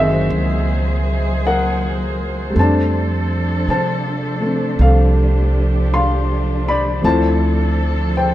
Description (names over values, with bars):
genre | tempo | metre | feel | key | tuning
jazz ballad | 54 BPM | 4/4 | swing 67% on 8ths | unclear | A4 = 440 Hz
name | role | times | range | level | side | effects
dark grand piano | accompaniment | 0.0-8.3 s | Eb3 to C6 | -19 LUFS | left 1 dB | none
dark symphonic cello section | sustained chords | 0.0-8.3 s | F3 to C5 | -22 LUFS | equal | none
upright bass | bass | 0.0-8.3 s | F#1 to C3 | -18 LUFS | right 1 dB | none
room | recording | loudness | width
light reverb | none | -15 LUFS | side -14 dB against mid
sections
0.0-8.3 A section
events
none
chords
0.0 F#7#11; 2.6 F6; 7.0 Dm7